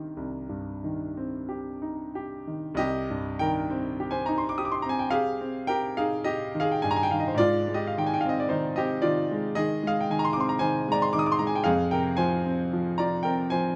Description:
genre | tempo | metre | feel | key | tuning
classical, romantic nocturne for solo piano | 45-58 BPM | 4/4 | rubato | C minor | A4 = 441 Hz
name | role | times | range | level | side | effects
clear grand piano | solo | 0.0-13.8 s | C2 to Eb6 | -27 LUFS | equal | none
room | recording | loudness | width
moderate large studio reverb, RT60 1.4 s | none | -27 LUFS | mono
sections
0.0-2.8 A section; 2.8-13.8 B section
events
none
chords
0.0 Cm; 7.4 Ab; 11.7 Fm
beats
0.16 1.48 | 2.78 4.00 5.11 6.25 | 7.39 8.51 9.57 10.61 | 11.66 12.73

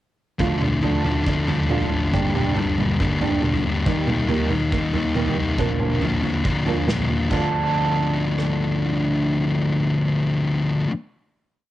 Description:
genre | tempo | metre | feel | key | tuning
quiet-loud alternative rock | 139 BPM | 4/4 | straight | D phrygian | A4 = 441 Hz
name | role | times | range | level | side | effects
fingerpicked old ladder-braced acoustic guitar | arpeggios | 0.4-10.9 s | Bb2 to A4 | -28 LUFS | right 7 dB | cassette tape
thick fuzz guitar | riff | 0.4-10.9 s | G2 to Eb4 | -21 LUFS | left 2 dB | distortion, cassette tape
fuzz picked electric bass | bass | 0.4-10.8 s | F1 to G2 | -30 LUFS | right 1 dB | none
loose indie drum kit | drums | 0.4-8.5 s | crash cymbal, kick drum, rim click, snare drum, toms | -24 LUFS | right 1 dB | cassette tape
room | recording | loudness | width
small room ambience | home recording on cassette | -19 LUFS | side -14 dB against mid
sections
0.4-7.3 verse; 7.3-10.8 final chord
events
none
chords
0.4 Dm; 2.1 Gm; 3.9 Eb; 5.6 Bb; 7.3 Dm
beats
| 0.40 0.83 1.27 1.70 | 2.13 2.57 3.00 3.43 | 3.87 4.30 4.73 5.16 | 5.59 6.02 6.45 6.88 | 7.31 7.74 8.17 8.60 | 9.03 9.46 9.89 10.32

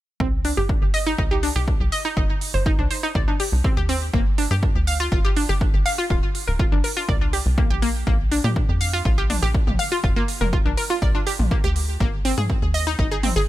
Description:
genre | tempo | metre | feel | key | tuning
melodic techno | 122 BPM | 4/4 | straight | C minor | A4 = 440 Hz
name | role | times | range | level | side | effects
analog pluck | arpeggios | 0.2-13.4 s | Bb3 to F5 | -24 LUFS | equal | chorus, sidechain pumping, digital delay
tight sequencer bass | bass | 0.2-13.5 s | D1 to Bb2 | -23 LUFS | equal | sidechain pumping
electronic kick drum | drums | 0.2-13.1 s | none | -22 LUFS | equal | none
techno drum kit | drums | 0.4-13.3 s | hi-hat, toms | -29 LUFS | right 1 dB | none
room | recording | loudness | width
digital ambience | none | -19 LUFS | side -15 dB against mid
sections
0.2-13.5 A section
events
none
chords
0.2 Cmadd9; 4.1 Gm7; 8.1 Bb; 12.0 Ab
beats
| 0.20 0.69 1.19 1.68 | 2.17 2.66 3.15 3.64 | 4.13 4.63 5.12 5.61 | 6.10 6.59 7.09 7.58 | 8.07 8.56 9.05 9.54 | 10.04 10.53 11.02 11.51 | 12.00 12.50 12.99 13.48

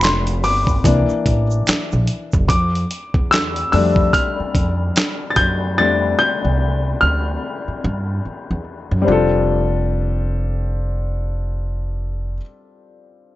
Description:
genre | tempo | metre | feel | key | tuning
R&B, neo-soul | 73 BPM | 4/4 | swing 61% on 16ths | F major | A4 = 440 Hz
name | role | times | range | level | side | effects
warm baby grand piano | accompaniment | 0.0-13.4 s | E3 to A6 | -19 LUFS | left 3 dB | none
upright bass | bass | 0.0-12.4 s | F1 to G2 | -20 LUFS | equal | none
dusty soul sampler-style drum kit | drums | 0.0-5.6 s | handclaps, hi-hat, kick drum, snare drum | -19 LUFS | equal | none
finger snaps and egg shaker | percussion | 0.0-2.5 s | none | -29 LUFS | right 7 dB | none
room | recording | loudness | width
small room ambience | dark, warm production, nothing above 8.0 kHz | -16 LUFS | side -15 dB against mid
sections
0.0-9.1 A section; 9.1-12.3 B section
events
grand piano solo 0.0-9.1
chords
0.0 Gm7; 0.8 C7; 2.5 F69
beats
0.02 0.84 1.66 | 2.49 3.31 4.13 4.95 | 5.77 6.59 7.42 8.24 | 9.06 9.88 10.71 11.53

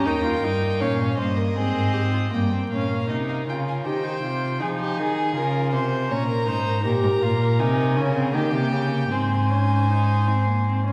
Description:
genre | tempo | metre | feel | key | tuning
classical, baroque-style fugue for string quartet | 79 BPM | 3/4 | straight | Ab major from 6.8 s | A4 = 440 Hz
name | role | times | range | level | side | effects
warm violin | melody | 0.0-10.9 s | Eb5 to Bb5 | -33 LUFS | equal | none
warm violin | second line | 0.0-10.9 s | F4 to Db5 | -30 LUFS | equal | none
warm viola | accompaniment | 0.0-10.9 s | Bb3 to G4 | -30 LUFS | equal | none
warm cello | bass | 0.0-10.9 s | Eb2 to F3 | -25 LUFS | equal | none
room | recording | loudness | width
wet scoring stage reverb, RT60 1.7 s | heard from further back in the room, vinyl crackle | -23 LUFS | mono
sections
0.0-2.3 A section; 2.3-10.9 B section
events
none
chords
0.1 Eb7; 1.6 Ab; 2.3 Gm7b5; 3.9 Cm/Eb; 4.6 Fm7; 6.1 Bbm; 8.3 Eb7; 9.1 Ab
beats
| 0.06 0.81 1.56 | 2.33 3.09 3.85 | 4.61 5.36 6.10 | 6.85 7.59 8.34 | 9.11 9.89 10.66

